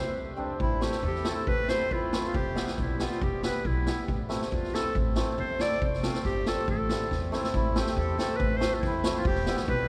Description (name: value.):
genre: klezmer.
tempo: 139 BPM.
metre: 2/4.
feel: straight.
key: A minor.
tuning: A4 = 440 Hz.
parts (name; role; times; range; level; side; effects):
warm clarinet; melody; 0.0-9.9 s; E4 to D5; -35 LUFS; equal; none.
hammered dulcimer; accompaniment; 0.0-9.9 s; G3 to G4; -35 LUFS; equal; none.
accordion; second line; 0.6-2.6, 7.6-9.6 s; E4 to A4; -39 LUFS; equal; none.
upright bass; bass; 0.6-9.9 s; E1 to E2; -35 LUFS; equal; none.
street-band drum kit; drums; 0.6-9.8 s; kick drum, snare drum; -34 LUFS; equal; none.
room: wet cathedral reverb, RT60 6.0 s.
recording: recorded in a church or concert hall.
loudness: -28 LUFS.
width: mono.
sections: 0.6-7.5 A section; 7.5-9.9 A section.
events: break 0.2-0.6; drum fill 7.1-7.5.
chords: 0.0 C5; 0.6 Am; 2.3 Em; 4.1 Am; 5.8 F; 6.7 Am; 9.2 Em.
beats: 0.16 | 0.60 1.04 | 1.48 1.91 | 2.35 2.78 | 3.22 3.65 | 4.08 4.52 | 4.95 5.38 | 5.82 6.25 | 6.68 7.11 | 7.54 7.96 | 8.39 8.82 | 9.25 9.68.